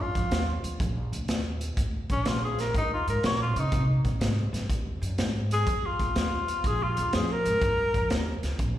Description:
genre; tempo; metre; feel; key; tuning
electric blues shuffle; 123 BPM; 4/4; swing 67% on 8ths; Bb mixolydian; A4 = 441 Hz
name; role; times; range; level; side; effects
clear tenor saxophone; melody; 0.0-8.3 s; Db4 to Db5; -28 LUFS; left 1 dB; slapback echo, analog delay
upright bass; bass; 0.0-8.8 s; Bb1 to Db3; -30 LUFS; equal; none
raw garage drum kit; drums; 0.2-8.7 s; hi-hat, kick drum, snare drum; -29 LUFS; equal; slapback echo
room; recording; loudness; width
light reverb; live gig heard through the venue's PA, recital hall reverb; -25 LUFS; side -12 dB against mid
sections
0.0-8.8 A section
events
none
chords
0.0 Bb; 2.7 Eb7; 4.7 Ebm; 6.6 Bb5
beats
0.31 | 0.80 1.29 1.77 2.26 | 2.75 3.23 3.72 4.21 | 4.70 5.18 5.67 6.16 | 6.64 7.13 7.62 8.11 | 8.59

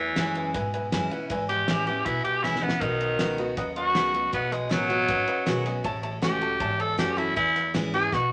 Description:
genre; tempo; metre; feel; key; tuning
rockabilly; 158 BPM; 4/4; straight; E major; A4 = 437 Hz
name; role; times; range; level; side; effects
raspy tenor saxophone; melody; 0.0-8.3 s; D#3 to A4; -27 LUFS; equal; none
dark upright piano; accompaniment; 0.0-8.2 s; B4 to A5; -37 LUFS; equal; none
picked steel-string acoustic guitar; accompaniment; 0.0-8.3 s; E2 to F#4; -34 LUFS; equal; none
upright bass; bass; 0.0-8.3 s; G#1 to B2; -38 LUFS; equal; none
cloth-damped thuddy drum kit; drums; 0.2-8.2 s; kick drum, ride cymbal, snare drum; -35 LUFS; equal; none
room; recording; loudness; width
wet studio ambience, RT60 0.5 s; none; -26 LUFS; mono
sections
0.0-8.3 A section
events
tenor saxophone solo 0.0-8.3; drum fill 2.4-2.8, 8.1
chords
0.0 E6; 2.8 B6; 5.8 A6; 7.4 E6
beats
0.17 0.55 0.92 | 1.30 1.68 2.06 2.44 | 2.82 3.20 3.58 3.95 | 4.33 4.71 5.09 5.47 | 5.85 6.23 6.61 6.99 | 7.37 7.75 8.12

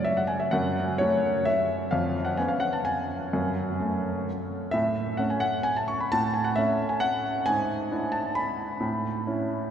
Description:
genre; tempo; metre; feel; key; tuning
classical, piano waltz; 122-140 BPM; 3/4; rubato; F# minor; A4 = 443 Hz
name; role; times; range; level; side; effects
warm grand piano; solo; 0.0-9.7 s; E#2 to C#6; -24 LUFS; equal; none
room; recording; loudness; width
wet cathedral reverb, RT60 6.5 s; heard from further back in the room; -24 LUFS; side -8 dB against mid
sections
0.0-9.7 A section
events
none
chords
0.0 F#m; 1.9 C#7/E#; 3.3 F#m; 4.7 A; 7.5 E7/G#; 8.8 A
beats
0.06 | 0.53 1.00 1.46 | 1.92 2.39 2.88 | 3.34 3.79 4.27 | 4.74 5.19 5.67 | 6.13 6.58 7.04 | 7.49 7.93 8.38 | 8.82 9.27

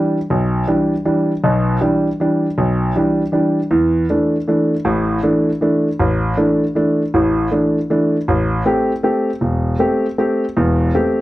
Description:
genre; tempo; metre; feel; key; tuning
jazz; 158 BPM; 3/4; swing 64% on 8ths; unclear; A4 = 438 Hz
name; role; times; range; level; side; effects
warm concert grand piano; solo; 0.0-11.2 s; E1 to G4; -14 LUFS; equal; none
room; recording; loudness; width
light reverb; dry, close 1970s-style studio recording; -14 LUFS; side -16 dB against mid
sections
0.0-8.3 A section; 8.3-11.2 B section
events
none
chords
0.0 Em7; 3.7 Dsus2; 8.3 Am7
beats
| 0.29 0.67 1.05 | 1.43 1.81 2.19 | 2.57 2.95 3.33 | 3.71 4.09 4.47 | 4.85 5.24 5.62 | 6.00 6.38 6.76 | 7.14 7.52 7.90 | 8.28 8.66 9.04 | 9.42 9.80 10.18 | 10.56 10.94

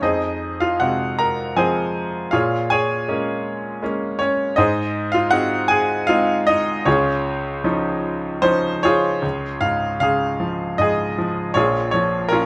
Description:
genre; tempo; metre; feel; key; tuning
classical, lyrical solo piano; 78 BPM; 3/4; rubato; Db major; A4 = 440 Hz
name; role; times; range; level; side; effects
bright grand piano; solo; 0.0-12.5 s; Bb1 to Bb5; -20 LUFS; equal; none
room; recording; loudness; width
light reverb; close, detailed microphones; -20 LUFS; mono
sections
0.0-9.2 A section; 9.2-12.5 B section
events
none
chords
0.0 Fm; 2.3 Bbm7; 4.6 Ab; 6.9 Dbadd9; 11.6 Bbm7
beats
| 0.01 0.80 1.57 | 2.32 3.08 3.83 | 4.58 5.33 6.09 | 6.87 7.65 8.44 | 9.24 10.02 10.79 | 11.55 12.31

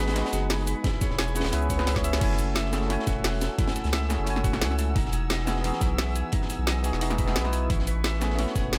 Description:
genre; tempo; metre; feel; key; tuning
liquid drum and bass; 175 BPM; 4/4; straight; F# dorian; A4 = 445 Hz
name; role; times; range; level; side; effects
bell-like tine electric piano; accompaniment; 0.0-8.8 s; E3 to G#5; -34 LUFS; equal; delay
muted studio string section; sustained chords; 0.0-8.8 s; A3 to E6; -40 LUFS; equal; sidechain pumping
concert harp; arpeggios; 0.0-8.8 s; D#4 to G#5; -38 LUFS; equal; digital delay
saturated sub bass; bass; 0.0-8.8 s; E1 to C#2; -30 LUFS; equal; none
crunchy breakbeat drum kit; drums; 0.1-8.8 s; hi-hat, snare drum; -38 LUFS; equal; high-pass filter on hats, high-pass filter on snare, high-pass filter on room
drum and bass drum kit; drums; 0.2-8.8 s; crash cymbal, hi-hat, shaker, snare drum; -33 LUFS; equal; none
electronic kick drum; drums; 0.8-8.6 s; none; -30 LUFS; equal; overdrive
room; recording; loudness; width
light reverb, small room ambience; none; -26 LUFS; mono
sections
0.0-2.2 A section; 2.2-8.8 A section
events
drop 0.0-2.2, 2.2-8.8; drum fill 1.9-2.2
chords
0.0 G#m7; 0.8 E6; 2.2 F#m9; 5.0 Emaj9; 7.7 Amaj9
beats
0.16 0.50 | 0.84 1.19 1.53 1.87 | 2.21 2.56 2.90 3.24 | 3.58 3.93 4.27 4.61 | 4.96 5.30 5.64 5.99 | 6.33 6.67 7.01 7.36 | 7.70 8.04 8.38 8.73

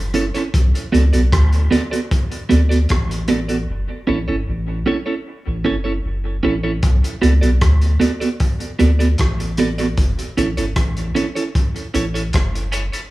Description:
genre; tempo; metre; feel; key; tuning
dub reggae; 76 BPM; 4/4; straight; B minor; A4 = 444 Hz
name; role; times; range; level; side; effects
soft dub sub bass; bass; 0.0-12.9 s; F#1 to D2; -17 LUFS; equal; none
clean electric guitar; accompaniment; 0.1-13.0 s; B3 to D5; -20 LUFS; right 3 dB; high-pass filter, dub echo
crunchy breakbeat drum kit; drums; 0.1-13.1 s; hi-hat, kick drum, rim click; -21 LUFS; equal; none
room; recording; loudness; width
small room ambience; none; -16 LUFS; side -17 dB against mid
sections
0.0-13.1 A section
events
break 3.7-6.8; filter sweep on clean electric guitar 10.0-13.1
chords
0.0 F#m7; 0.5 Bm7; 3.7 F#m7; 6.8 Bm7; 10.0 F#m7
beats
| 0.53 1.32 2.11 2.90 | 3.68 4.47 5.25 6.04 | 6.83 7.61 8.40 9.19 | 9.97 10.76 11.55 12.33

